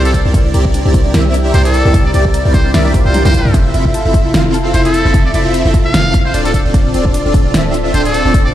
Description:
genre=future bass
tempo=150 BPM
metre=4/4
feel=swing 56% on 16ths, half-time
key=unclear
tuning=A4 = 439 Hz
part: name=airy dreamy lead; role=arpeggios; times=0.0-8.5 s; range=D5 to G5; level=-23 LUFS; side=left 1 dB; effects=chorus, sidechain pumping, tape echo
part: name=supersaw chords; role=riff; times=0.0-8.5 s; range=C4 to G5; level=-17 LUFS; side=equal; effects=analog chorus, sidechain pumping
part: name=warm 808-style bass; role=bass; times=0.0-8.5 s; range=D1 to C2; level=-14 LUFS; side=equal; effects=sidechain pumping
part: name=trumpet with metal mute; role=melody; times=0.1-8.5 s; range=A4 to F5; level=-20 LUFS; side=equal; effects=sidechain pumping, ping-pong delay
part: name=soft round pluck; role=arpeggios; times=0.1-8.5 s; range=D4 to A5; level=-25 LUFS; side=left 5 dB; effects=chorus, sidechain pumping, tape echo
part: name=electronic kick drum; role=drums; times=0.1-8.4 s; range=none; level=-13 LUFS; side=equal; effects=none
part: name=pop drum kit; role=drums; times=0.1-8.4 s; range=hi-hat, ride cymbal, snare drum, toms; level=-18 LUFS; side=right 1 dB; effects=none
part: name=swell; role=sound effects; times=3.0-3.5 s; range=none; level=-27 LUFS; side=left 1 dB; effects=none
room=light reverb, digital ambience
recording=played on a big sound system in a bare room, large studio reverb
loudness=-9 LUFS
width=side -12 dB against mid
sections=0.0-8.5 A section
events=swell 3.0-3.5; drum fill 3.1-3.5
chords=0.1 C9; 3.5 Dm7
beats=| 0.34 0.74 1.14 1.54 | 1.94 2.34 2.74 3.14 | 3.54 3.94 4.34 4.74 | 5.14 5.54 5.94 6.34 | 6.74 7.14 7.54 7.94 | 8.34

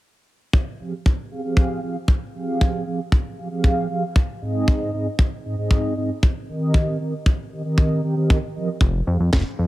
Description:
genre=italo disco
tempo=116 BPM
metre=4/4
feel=straight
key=F minor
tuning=A4 = 440 Hz
part: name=kick drum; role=drums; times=0.5-9.4 s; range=none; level=-18 LUFS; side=equal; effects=none
part: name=mellow synth brass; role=stabs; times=0.8-9.7 s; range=Ab2 to G5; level=-24 LUFS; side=right 1 dB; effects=chorus
part: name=fat analog bass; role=bass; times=8.8-9.7 s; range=F1 to F2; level=-20 LUFS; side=equal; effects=tube saturation
part: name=snare drum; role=drums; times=9.3-9.4 s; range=none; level=-25 LUFS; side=right 1 dB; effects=none
room=studio reverb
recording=none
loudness=-19 LUFS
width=side -17 dB against mid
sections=0.5-9.7 A section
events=none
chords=0.5 Fmadd9; 4.7 Ab; 6.7 Eb6; 8.8 Fmadd9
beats=| 0.54 1.05 1.57 2.09 | 2.61 3.12 3.64 4.16 | 4.67 5.19 5.71 6.23 | 6.74 7.26 7.78 8.30 | 8.81 9.33

